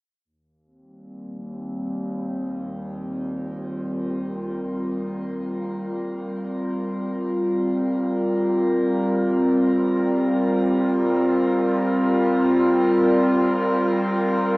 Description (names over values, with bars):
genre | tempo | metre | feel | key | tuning
ambient | free time | none | none | Eb major | A4 = 440 Hz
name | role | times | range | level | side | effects
warbly tape-like pad | sustained chords | 1.0-14.6 s | Eb2 to Bb4 | -20 LUFS | equal | chorus, built-in reverb
room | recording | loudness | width
wet shimmer reverb, RT60 8.2 s | small speaker sound | -20 LUFS | side -23 dB against mid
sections
0.3-14.6 A section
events
none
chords
0.3 Eb; 7.4 Fsus4